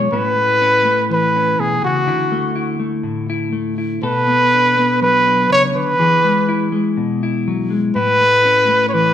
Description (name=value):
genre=highlife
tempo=122 BPM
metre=4/4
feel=swing 53% on 16ths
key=A major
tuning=A4 = 440 Hz
part: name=clean electric guitar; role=accompaniment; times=0.0-9.1 s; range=A2 to A4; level=-19 LUFS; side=left 2 dB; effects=none
part: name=warm trumpet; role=melody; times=0.1-9.1 s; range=F#4 to C#5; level=-14 LUFS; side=equal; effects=none
room=wet large studio reverb, RT60 1.2 s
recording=band playing live in one room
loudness=-13 LUFS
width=side -10 dB against mid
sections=0.1-9.1 A section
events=none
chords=0.1 Aadd9; 2.1 Dadd9; 4.0 Bm7; 6.0 E; 8.0 Aadd9